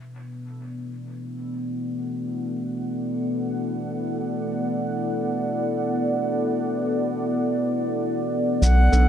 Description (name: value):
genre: ambient dub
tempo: free time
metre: none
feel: none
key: B minor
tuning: A4 = 441 Hz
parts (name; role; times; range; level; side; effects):
- deep dark ambient pad; sustained chords; 0.0-9.1 s; B3 to F#5; -24 LUFS; equal; chorus, built-in reverb
- bright reedy concert flute; melody; 8.6-9.1 s; F#5; -24 LUFS; equal; none
- round analog bass; bass; 8.6-9.1 s; B1; -15 LUFS; equal; none
- cabasa; drums; 8.6-9.1 s; none; -35 LUFS; left 2 dB; small room ambience, dub echo
- overdriven tine electric piano; stabs; 8.9-9.1 s; B3 to A4; -28 LUFS; right 3 dB; none
room: light reverb, digital ambience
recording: none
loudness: -23 LUFS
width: side -9 dB against mid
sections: 0.0-8.6 A section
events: none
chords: 0.0 Bm7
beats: free time